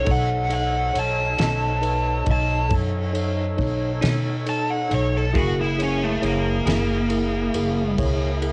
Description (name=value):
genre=slow blues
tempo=46 BPM (dotted quarters)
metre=12/8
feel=straight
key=unclear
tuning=A4 = 435 Hz
part: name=biting lead guitar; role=melody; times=0.0-8.0 s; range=A3 to A5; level=-26 LUFS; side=equal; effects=overdrive, cassette tape
part: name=tonewheel organ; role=sustained chords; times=0.0-8.5 s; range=A#3 to C#5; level=-33 LUFS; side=equal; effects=slow rotary speaker, overdrive, chorus vibrato, cassette tape
part: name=upright bass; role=bass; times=0.0-8.5 s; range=F#1 to B2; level=-27 LUFS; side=equal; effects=none
part: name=tine electric piano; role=accompaniment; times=0.1-8.5 s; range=D#4 to D#5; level=-31 LUFS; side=equal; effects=cassette tape
part: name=warm soul drum kit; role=drums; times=0.1-8.5 s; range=kick drum, ride cymbal, snare drum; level=-30 LUFS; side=equal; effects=cassette tape
part: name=clean electric guitar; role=accompaniment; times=1.4-6.9 s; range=B2 to G#4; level=-33 LUFS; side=equal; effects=tremolo, cassette tape
room=little or no reverb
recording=home recording on cassette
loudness=-22 LUFS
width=mono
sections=0.0-8.5 A section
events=lead electric guitar solo 0.0-8.5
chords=0.0 B9; 5.3 F#9